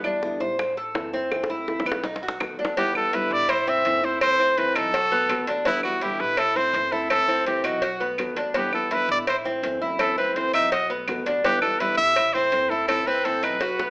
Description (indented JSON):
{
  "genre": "latin, Cuban son and guajira",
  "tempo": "166 BPM",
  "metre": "4/4",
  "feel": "straight",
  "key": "E minor",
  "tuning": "A4 = 441 Hz",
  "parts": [
    { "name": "nylon-string guitar", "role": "accompaniment", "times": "0.0-13.9 s", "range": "B2 to F#4", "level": "-32 LUFS", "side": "equal", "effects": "none" },
    { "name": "Cuban tres", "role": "arpeggios", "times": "0.0-13.9 s", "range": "B3 to C5", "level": "-26 LUFS", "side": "equal", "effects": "none" },
    { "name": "upright bass", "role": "bass", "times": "0.0-13.9 s", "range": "F#1 to E2", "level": "-44 LUFS", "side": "equal", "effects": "none" },
    { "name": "bongos and cowbell", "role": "percussion", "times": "0.0-13.9 s", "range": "none", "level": "-29 LUFS", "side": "left 1 dB", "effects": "none" },
    { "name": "claves", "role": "percussion", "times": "0.0-13.6 s", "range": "none", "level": "-32 LUFS", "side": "right 2 dB", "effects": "none" },
    { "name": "clear trumpet", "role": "melody", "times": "2.8-13.9 s", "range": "E4 to E5", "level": "-22 LUFS", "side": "equal", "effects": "none" }
  ],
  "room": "moderate large studio reverb, RT60 1.1 s",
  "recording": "AM radio sound",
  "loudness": "-20 LUFS",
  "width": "side -25 dB against mid",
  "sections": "0.0-2.8 A section; 2.8-13.9 B section",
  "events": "drum fill 1.3-2.8, 13.6",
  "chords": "0.0 Em7; 0.6 Am; 1.3 F#m7b5; 2.0 B7; 2.8 Em7; 3.5 Am; 4.2 F#m7b5; 4.9 B7; 5.7 Em7; 6.4 Am; 7.1 F#m7b5; 7.8 B7; 8.6 Em7; 9.3 Am; 10.0 F#m7b5; 10.7 B7; 11.4 Em7; 12.2 Am; 12.9 F#m7b5"
}